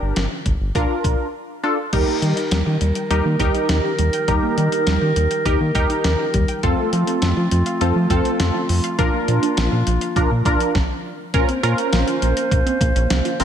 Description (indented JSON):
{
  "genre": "synth-pop",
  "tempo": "102 BPM",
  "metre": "4/4",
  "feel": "straight",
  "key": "unclear",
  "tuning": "A4 = 441 Hz",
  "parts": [
    { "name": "funky polysynth comp", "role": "accompaniment", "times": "0.0-13.4 s", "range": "C4 to Bb4", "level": "-22 LUFS", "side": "equal", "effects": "chorus, phaser" },
    { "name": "round analog bass", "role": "bass", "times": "0.0-13.4 s", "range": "F1 to F3", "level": "-20 LUFS", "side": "equal", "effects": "none" },
    { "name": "clean 12-bit digital drum machine", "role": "drums", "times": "0.2-13.4 s", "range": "crash cymbal, hi-hat, kick drum, snare drum", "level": "-23 LUFS", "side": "equal", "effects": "gated reverb" },
    { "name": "dark woodwind section", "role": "sustained chords", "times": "1.9-13.4 s", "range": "Eb3 to C5", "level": "-24 LUFS", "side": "equal", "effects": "none" },
    { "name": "wide unison pluck", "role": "arpeggios", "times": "1.9-13.4 s", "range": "F3 to G5", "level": "-26 LUFS", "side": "moving between left 3 dB and right 7 dB", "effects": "auto-pan, tape echo" }
  ],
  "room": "light reverb",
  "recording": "none",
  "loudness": "-17 LUFS",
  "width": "side -9 dB against mid",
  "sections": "0.0-1.9 A section; 1.9-11.3 B section; 11.3-13.4 C section",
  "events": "break 1.3-1.9; stop 10.8-11.3",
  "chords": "0.0 Gm; 0.8 Bb; 1.9 Eb; 6.6 F; 9.0 Bb; 11.3 Bbmadd9"
}